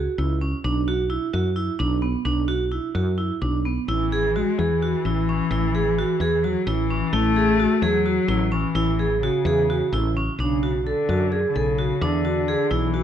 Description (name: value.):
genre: contemporary instrumental, chamber music in an uneven meter.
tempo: 259 BPM (eighths).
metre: 7/8.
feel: straight.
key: B dorian.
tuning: A4 = 439 Hz.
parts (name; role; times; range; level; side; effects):
vibraphone with hard mallets; arpeggios; 0.0-13.0 s; B3 to A4; -24 LUFS; right 5 dB; none.
woody fretless electric bass; bass; 0.0-13.0 s; A1 to F#2; -25 LUFS; left 1 dB; none.
dark cello; second line; 3.9-13.0 s; C#3 to A3; -24 LUFS; left 7 dB; none.
room: moderate recital hall reverb, RT60 1.4 s.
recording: dark, warm production.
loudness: -20 LUFS.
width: side -9 dB against mid.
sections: 0.0-10.4 A section; 10.4-13.0 B section.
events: none.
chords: 0.0 F#5; 0.6 Bm; 3.9 Amaj7(no3); 10.4 Bm9; 12.0 E9.